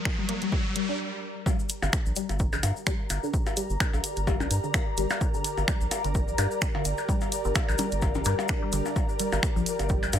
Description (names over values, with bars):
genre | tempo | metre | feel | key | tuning
minimal techno | 128 BPM | 4/4 | swing 56% on 16ths | G minor | A4 = 441 Hz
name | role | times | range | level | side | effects
riser | sound effects | 0.0-1.0 s | none | -34 LUFS | equal | none
ethereal airy pad | texture | 0.0-10.2 s | G4 to Bb5 | -33 LUFS | left 1 dB | ensemble chorus, built-in reverb, sidechain pumping
electronic kick drum | drums | 0.1-10.0 s | none | -28 LUFS | equal | none
punchy analog drum machine | drums | 0.1-10.2 s | finger snaps, hi-hat | -30 LUFS | right 1 dB | none
resonant blip pluck | riff | 0.2-10.0 s | D3 to D4 | -34 LUFS | left 2 dB | phaser, wide subtle chorus, sidechain pumping, dub echo
cabasa | percussion | 1.5-10.2 s | none | -38 LUFS | left 4 dB | none
percussion blips | percussion | 1.5-10.2 s | none | -33 LUFS | left 3 dB | none
round analog bass | bass | 1.8-10.2 s | G1 to G2 | -28 LUFS | equal | sidechain pumping
room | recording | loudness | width
light reverb, digital ambience | none | -25 LUFS | side -10 dB against mid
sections
0.0-1.5 A section; 1.5-10.2 B section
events
build-up 0.0-1.5; riser 0.0-1.0; filter sweep on synth pluck 0.0-1.5; stop 1.0-1.5; drop 1.5-10.2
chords
0.0 Gm